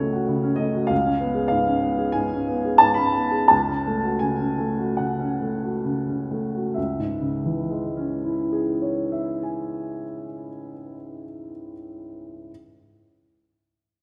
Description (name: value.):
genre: classical, romantic character piece for solo piano.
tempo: 62-100 BPM.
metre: 4/4.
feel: rubato.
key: C# minor.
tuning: A4 = 440 Hz.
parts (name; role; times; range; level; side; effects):
clear baby grand piano; solo; 0.0-12.5 s; C#2 to B5; -24 LUFS; equal; none.
room: wet recital hall reverb, RT60 1.7 s.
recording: heard from further back in the room.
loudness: -23 LUFS.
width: mono.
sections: 0.0-6.8 A section; 6.8-10.3 B section.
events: slowing down 0.0-6.8.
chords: 0.0 F#m/C#; 0.9 C#7; 3.5 F#m/C#; 6.8 C#m.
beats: 0.29 | 0.91 1.52 2.15 2.82 | 3.50 4.22 4.99 5.84 | 6.76 7.62 8.49 9.38.